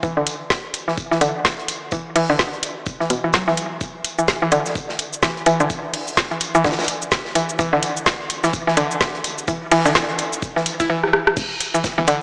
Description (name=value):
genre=minimal techno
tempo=127 BPM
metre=4/4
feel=swing 59% on 16ths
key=E minor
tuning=A4 = 443 Hz
part: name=mallet-like synth pluck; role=riff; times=0.0-12.1 s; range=B2 to E4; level=-22 LUFS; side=equal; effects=chorus, sidechain pumping, tape echo
part: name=electronic kick drum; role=drums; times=0.0-12.0 s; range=none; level=-32 LUFS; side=equal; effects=none
part: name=modern studio drum kit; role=drums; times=0.0-12.2 s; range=hi-hat, shaker, snare drum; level=-32 LUFS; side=equal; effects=sidechain pumping on hats, high-pass filter on hats, high-pass filter on snare, sidechain pumping on perc, high-pass filter on perc, high-pass filter on room
part: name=garage drum kit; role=drums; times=0.3-12.2 s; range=crash cymbal, hi-hat, rim click, shaker, snare drum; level=-23 LUFS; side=equal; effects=none
part: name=hollow knocking FM bass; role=bass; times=11.4-12.0 s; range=E1 to G1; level=-32 LUFS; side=equal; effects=sidechain pumping
room=wet lush hall reverb, RT60 2.6 s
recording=dry, gritty hardware recording, small speaker sound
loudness=-20 LUFS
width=mono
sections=0.0-11.4 A section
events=build-up 0.0-11.4; filter sweep on synth arpeggio sound 0.0-11.4; drum fill 11.0-11.4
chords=0.0 E5; 11.4 N.C.